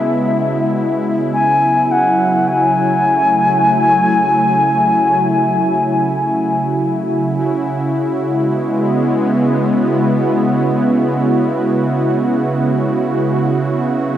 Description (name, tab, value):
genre	ambient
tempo	free time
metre	none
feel	none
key	C# minor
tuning	A4 = 440 Hz
part	wooden flute	melody	0.0-6.7 s	E5 to G#5	-15 LUFS	left 1 dB	vintage 12-bit sampler grit, dub echo
part	warm analog pad	sustained chords	0.0-14.2 s	C#3 to F#4	-15 LUFS	right 1 dB	chorus
room	wet spring reverb, RT60 2.5 s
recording	echo-heavy mix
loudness	-13 LUFS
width	side -11 dB against mid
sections	0.0-7.4 A section; 7.4-14.2 B section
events	none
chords	0.0 C#m7; 1.3 F#m9; 7.4 C#m7; 13.5 F#7(no3)